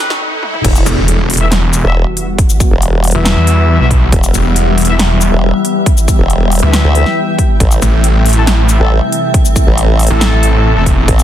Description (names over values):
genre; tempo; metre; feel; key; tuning
heavy wobble dubstep; 138 BPM; 4/4; half-time; E minor; A4 = 438 Hz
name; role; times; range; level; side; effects
supersaw chords; sustained chords; 0.0-11.2 s; B2 to G4; -21 LUFS; right 1 dB; sidechain pumping, low-pass filter
riser and impact; sound effects; 0.0-2.4 s; none; -17 LUFS; equal; none
granular cloud pad; texture; 0.0-11.2 s; G3 to A5; -18 LUFS; left 2 dB; built-in reverb, sidechain pumping
big-room dance drum kit; drums; 0.1-11.2 s; crash cymbal, handclaps, hi-hat, shaker, snare drum, toms; -17 LUFS; left 1 dB; overdrive, studio reverb
formant-sweep wobble bass; bass; 0.6-11.2 s; E1 to D2; -11 LUFS; equal; chorus, overdrive
electronic kick drum; drums; 0.6-11.2 s; none; -11 LUFS; equal; overdrive, studio reverb
snarling distorted saw bass; bass; 0.9-11.1 s; E1 to E2; -11 LUFS; equal; overdrive
clear brass ensemble; stabs; 1.4-10.8 s; A3 to E5; -19 LUFS; left 5 dB; tape echo
room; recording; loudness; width
digital ambience; dense, heavily limited modern master, high-pass filter; -8 LUFS; side -11 dB against mid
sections
0.6-11.2 A section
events
drum fill 0.0, 0.4; riser 0.0-0.6; stop 0.2-0.6; drop 0.6-11.2; impact 0.6-2.4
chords
0.0 B; 0.6 Emadd9; 7.6 Am